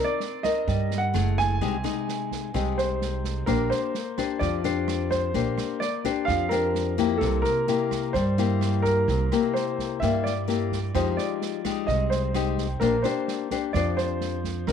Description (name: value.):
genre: bossa nova.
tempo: 129 BPM.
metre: 4/4.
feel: straight.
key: Bb major.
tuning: A4 = 440 Hz.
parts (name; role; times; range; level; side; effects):
warm baby grand piano; melody; 0.0-14.7 s; A4 to Ab5; -28 LUFS; right 2 dB; none.
nylon-string guitar; accompaniment; 0.0-14.7 s; C3 to D5; -27 LUFS; left 10 dB; none.
open jazz drum kit; drums; 0.2-14.7 s; kick drum, rim click, snare drum; -35 LUFS; right 10 dB; none.
upright bass; bass; 0.7-14.7 s; Gb1 to G2; -28 LUFS; right 3 dB; none.
room: moderate spring reverb, RT60 1.5 s.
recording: 1960s-style stereo with parts hard left and right.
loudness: -23 LUFS.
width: side -7 dB against mid.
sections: 0.0-14.7 A section.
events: none.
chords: 0.0 Cm9; 1.1 Gbm9; 1.6 Abmaj7/C; 3.5 Bb69; 7.2 C7; 10.9 Fm9; 12.8 Bb69.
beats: 0.22 0.68 1.15 | 1.62 2.08 2.55 3.02 | 3.48 3.95 4.41 4.88 | 5.35 5.81 6.28 6.75 | 7.21 7.68 8.15 8.61 | 9.08 9.55 10.01 10.48 | 10.95 11.41 11.88 12.35 | 12.81 13.28 13.74 14.21 | 14.68.